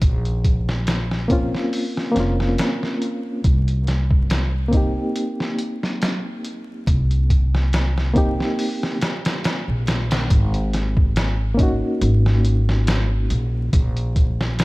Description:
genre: trip hop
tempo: 70 BPM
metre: 4/4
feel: swing 55% on 16ths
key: unclear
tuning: A4 = 441 Hz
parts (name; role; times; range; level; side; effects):
- upright bass; bass; 0.0-14.6 s; F1 to C2; -20 LUFS; equal; none
- trip hop sampler-style drum kit; drums; 0.0-14.6 s; hi-hat, kick drum, snare drum; -21 LUFS; equal; studio reverb
- reed electric piano; accompaniment; 1.3-13.7 s; Bb3 to G4; -24 LUFS; equal; fast tremolo, tape echo
room: digital ambience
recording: dark, warm production, vinyl crackle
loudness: -18 LUFS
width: side -21 dB against mid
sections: 0.0-10.3 A section; 10.3-14.6 B section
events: none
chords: 0.0 Bbmadd9; 3.4 Cm7; 10.3 Ab7sus4; 13.7 N.C.

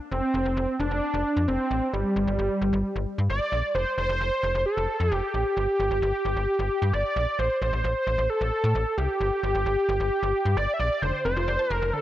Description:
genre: synth-pop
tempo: 132 BPM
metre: 4/4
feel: straight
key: F major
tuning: A4 = 441 Hz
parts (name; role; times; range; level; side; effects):
- wide unison lead; melody; 0.1-12.0 s; G3 to E5; -24 LUFS; equal; ping-pong delay
- slap-like FM bass; bass; 0.1-11.9 s; F1 to A2; -27 LUFS; equal; none
- resonant blip pluck; arpeggios; 11.0-12.0 s; D3 to C6; -33 LUFS; left 2 dB; chorus, ping-pong delay
room: light reverb, digital ambience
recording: worn, warbling old tape, cassette tape, warbly pitch drift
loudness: -23 LUFS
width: side -13 dB against mid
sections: 0.0-3.8 A section; 3.8-12.0 B section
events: none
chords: 0.1 F5; 1.9 G5; 3.8 F; 5.6 G5; 7.4 Am; 9.2 G5; 11.0 F5

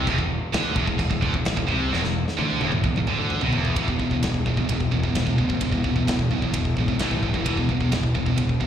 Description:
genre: heavy metal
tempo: 130 BPM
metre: 4/4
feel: straight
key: unclear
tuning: A4 = 440 Hz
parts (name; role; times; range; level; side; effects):
- heavy high-gain guitar; riff; 0.0-8.7 s; E2 to A3; -26 LUFS; right 7 dB; distortion
- sludgy distorted guitar; riff; 0.0-8.7 s; E2 to A3; -28 LUFS; left 10 dB; overdrive
- fuzz picked electric bass; bass; 0.0-8.7 s; E1 to D2; -26 LUFS; equal; overdrive
- modern studio drum kit; drums; 0.1-8.7 s; china cymbal, kick drum, ride cymbal, snare drum, toms; -26 LUFS; equal; none
room: light reverb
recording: live gig heard through the venue's PA, recital hall reverb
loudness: -21 LUFS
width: side -9 dB against mid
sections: 0.0-3.8 A section; 3.8-8.7 B section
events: drum fill 1.9-3.8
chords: 0.0 E5; 7.0 A5; 7.5 E5

